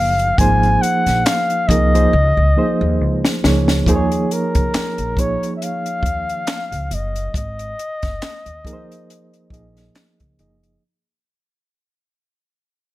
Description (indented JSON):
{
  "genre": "R&B, neo-soul",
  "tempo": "69 BPM",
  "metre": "4/4",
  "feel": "swing 56% on 16ths",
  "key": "Eb dorian",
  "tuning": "A4 = 440 Hz",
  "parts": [
    { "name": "breathy flugelhorn", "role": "melody", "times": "0.0-9.9 s", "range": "Ab4 to Ab5", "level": "-20 LUFS", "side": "left 1 dB", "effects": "none" },
    { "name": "mellow reed electric piano", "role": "accompaniment", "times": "0.0-10.8 s", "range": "F3 to Eb5", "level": "-20 LUFS", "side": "right 2 dB", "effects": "fast tremolo" },
    { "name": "upright bass", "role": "bass", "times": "0.0-10.8 s", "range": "Gb1 to Eb2", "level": "-19 LUFS", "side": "equal", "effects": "none" },
    { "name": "compact cocktail drum kit", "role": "drums", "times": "0.2-10.8 s", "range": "handclaps, hi-hat, kick drum, snare drum", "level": "-21 LUFS", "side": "equal", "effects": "none" }
  ],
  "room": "light reverb",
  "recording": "none",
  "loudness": "-15 LUFS",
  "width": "side -16 dB against mid",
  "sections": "0.0-3.9 A section; 3.9-10.8 B section",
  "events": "drum fill 2.1-3.9; fade-out 3.9-10.8",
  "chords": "0.4 Abadd9; 2.1 Dbmaj9; 3.9 Ebm9"
}